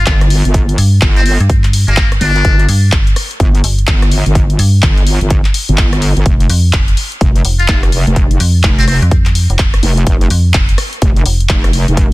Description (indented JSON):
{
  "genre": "bass house",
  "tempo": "126 BPM",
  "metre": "4/4",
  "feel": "swing 62% on 16ths",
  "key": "unclear",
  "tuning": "A4 = 440 Hz",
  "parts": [
    { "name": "trumpet with metal mute", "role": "melody", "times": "0.0-2.7, 7.6-9.0 s", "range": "Bb3 to F4", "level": "-19 LUFS", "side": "left 2 dB", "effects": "tape echo" },
    { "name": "metallic FM bass", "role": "bass", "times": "0.0-11.5 s", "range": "F1 to G2", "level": "-11 LUFS", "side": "equal", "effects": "tube saturation, sidechain pumping" },
    { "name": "impact and noise sweep", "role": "sound effects", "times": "0.0-0.5, 12.0-12.1 s", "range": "none", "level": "barely audible", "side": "none", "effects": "none" },
    { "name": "wobble bass", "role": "bass", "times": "0.1-12.1 s", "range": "F1 to G1", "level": "-13 LUFS", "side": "equal", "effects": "chorus, sidechain pumping" },
    { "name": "big-room dance drum kit", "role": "drums", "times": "0.1-12.1 s", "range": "handclaps, hi-hat, rim click", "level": "-18 LUFS", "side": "left 1 dB", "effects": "none" },
    { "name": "electronic kick drum", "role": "drums", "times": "0.1-12.1 s", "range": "none", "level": "-12 LUFS", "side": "equal", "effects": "none" }
  ],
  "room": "little or no reverb",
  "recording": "dense, heavily limited modern master",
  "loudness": "-9 LUFS",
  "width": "side -19 dB against mid",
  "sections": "0.0-12.1 A section",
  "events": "impact 0.0-0.5",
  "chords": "0.0 G5; 6.3 F5"
}